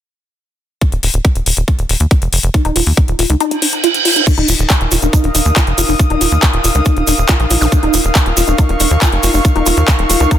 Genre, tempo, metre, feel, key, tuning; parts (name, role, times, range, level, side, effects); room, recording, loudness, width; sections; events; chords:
psychedelic trance; 139 BPM; 4/4; straight; A4 = 438 Hz
electronic kick drum; drums; 0.8-10.4 s; -11 LUFS; equal; studio reverb
garage drum kit; drums; 0.8-10.4 s; crash cymbal, handclaps, hi-hat; -17 LUFS; left 2 dB; studio reverb
tight sequencer bass; bass; 0.9-10.3 s; Eb1 to Eb2; -15 LUFS; equal
woody wave-folded pluck; riff; 2.5-10.4 s; Eb4 to F4; -18 LUFS; moving between left 5 dB and right 3 dB; chorus, auto-pan, sidechain pumping, tape echo
reverse cymbal and zap; sound effects; 3.6-4.3, 7.6-7.7 s; -16 LUFS; right 6 dB
tube shaker; percussion; 4.3-10.4 s; -22 LUFS; right 7 dB
airy breathy pad; texture; 4.3-10.4 s; Eb4 to Eb6; -19 LUFS; equal; chorus, sidechain pumping
little or no reverb; dense, heavily limited modern master; -10 LUFS; side -11 dB against mid
0.8-4.3 A section; 4.3-10.4 B section
kick drops out 3.4-4.3; reverse cymbal 3.6-4.3; filter sweep on synth arpeggio sound 4.3-10.4
0.8 Ebsus2; 4.3 Eb5